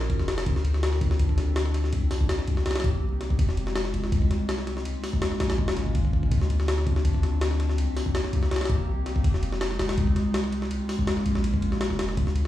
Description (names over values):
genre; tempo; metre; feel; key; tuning
drum and bass, jungle; 164 BPM; 4/4; straight; D phrygian; A4 = 438 Hz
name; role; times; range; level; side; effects
warbly tape-like pad; sustained chords; 0.0-12.5 s; Ab3 to Bb4; -32 LUFS; left 1 dB; chorus, built-in reverb, vintage 12-bit sampler grit
long sustained 808-style bass; bass; 0.0-12.5 s; F1 to D2; -26 LUFS; left 1 dB; none
jungle sampler-style drum kit; drums; 0.0-12.5 s; hi-hat, kick drum, ride cymbal, snare drum; -27 LUFS; left 1 dB; studio ambience
drifting glass-harmonics texture; texture; 0.0-0.5 s; C5; -49 LUFS; left 1 dB; none
room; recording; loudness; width
light reverb; played on a big sound system in a bare room, large studio reverb, vinyl crackle, studio reverb; -23 LUFS; side -13 dB against mid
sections
0.5-12.5 A section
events
drop 0.5-12.5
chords
0.5 Dm7; 1.9 Cm7; 3.4 Fm7; 4.9 Bbm7; 6.3 Dm7; 7.8 Cm7; 9.2 Fm7; 10.7 Bbm7